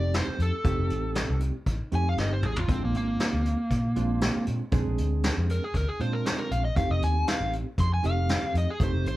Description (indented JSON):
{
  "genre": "straight-eighth soul blues",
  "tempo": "118 BPM",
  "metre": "4/4",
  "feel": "straight",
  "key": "F mixolydian",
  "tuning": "A4 = 441 Hz",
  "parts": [
    { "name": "overdriven slide guitar", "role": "melody", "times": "0.0-9.2 s", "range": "Bb3 to C6", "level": "-30 LUFS", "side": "equal", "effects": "none" },
    { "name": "bright reed electric piano", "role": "accompaniment", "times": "0.0-9.2 s", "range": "Ab3 to Ab4", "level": "-33 LUFS", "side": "right 4 dB", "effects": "harmonic tremolo" },
    { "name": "vintage muted fingered electric bass", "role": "bass", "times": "0.0-9.2 s", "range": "F1 to Bb2", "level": "-27 LUFS", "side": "equal", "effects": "none" },
    { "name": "vintage brush drum kit", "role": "drums", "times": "0.1-9.2 s", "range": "hi-hat, kick drum, snare drum, toms", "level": "-30 LUFS", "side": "equal", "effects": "none" }
  ],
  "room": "light reverb",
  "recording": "band playing live in one room",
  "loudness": "-24 LUFS",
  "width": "side -16 dB against mid",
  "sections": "0.0-9.2 A section",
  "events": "electric slide guitar solo 0.0-9.2; drum fill 2.2-2.7",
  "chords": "0.0 F7; 2.7 Bb7; 6.8 F7",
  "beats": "0.14 | 0.65 1.16 1.67 2.18 | 2.69 3.20 3.71 4.22 | 4.73 5.24 5.75 6.26 | 6.77 7.28 7.79 8.29 | 8.80"
}